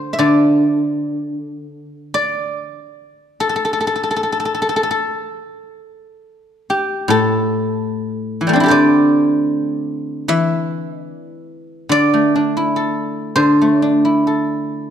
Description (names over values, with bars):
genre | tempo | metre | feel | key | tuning
chinese traditional, Chinese solo plucked strings | 74 BPM | 4/4 | uneven beats, rubato | D shang mode | A4 = 440 Hz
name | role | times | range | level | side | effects
guzheng | solo | 0.0-14.9 s | A2 to E5 | -15 LUFS | equal | none
room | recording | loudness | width
moderate recital hall reverb, RT60 1.7 s | dark, warm production | -14 LUFS | side -9 dB against mid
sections
0.0-2.1 A section; 2.1-14.9 B section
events
none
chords
none